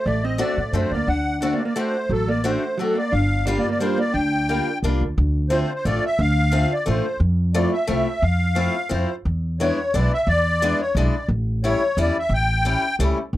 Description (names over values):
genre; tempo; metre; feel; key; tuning
musette waltz; 176 BPM; 3/4; swing 53% on 8ths; G minor, D minor from 5.2 s; A4 = 441 Hz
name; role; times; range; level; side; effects
musette accordion; melody; 0.0-13.0 s; A4 to G5; -23 LUFS; left 1 dB; none
hollow-body jazz guitar; second line; 0.0-4.8 s; F#3 to D4; -25 LUFS; right 2 dB; none
upright bass; bass; 0.1-13.4 s; G1 to A2; -21 LUFS; equal; none
picked acoustic archtop guitar; accompaniment; 0.4-13.2 s; G3 to F#4; -25 LUFS; left 2 dB; none
room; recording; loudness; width
light reverb; dry, close 1970s-style studio recording; -19 LUFS; side -15 dB against mid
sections
0.0-5.2 A section; 5.2-13.4 B section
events
none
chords
0.0 D7; 3.1 Gm7; 5.2 Dm7; 7.2 Fmaj7; 9.2 E7; 11.3 A7